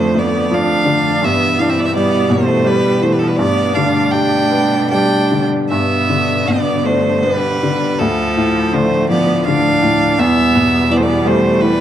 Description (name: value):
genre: celtic folk, Celtic slow air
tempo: 74-86 BPM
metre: 3/4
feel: rubato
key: unclear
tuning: A4 = 440 Hz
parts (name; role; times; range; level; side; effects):
- clear fiddle; melody; 0.0-11.8 s; A4 to G5; -18 LUFS; right 1 dB; none
- clear viola; second line; 0.0-11.8 s; F3 to D4; -18 LUFS; right 2 dB; none
- bright upright piano; accompaniment; 0.0-11.8 s; D2 to D4; -16 LUFS; left 2 dB; none
- clear symphonic string section; sustained chords; 0.0-11.8 s; D2 to A3; -22 LUFS; right 2 dB; none
room: moderate recital hall reverb, RT60 1.4 s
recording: dark, warm production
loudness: -12 LUFS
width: side -10 dB against mid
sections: 0.0-11.8 A section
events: none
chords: 0.0 Dm/F; 1.2 Em/G; 3.4 Gadd9; 5.7 G; 8.0 Dm; 10.2 Em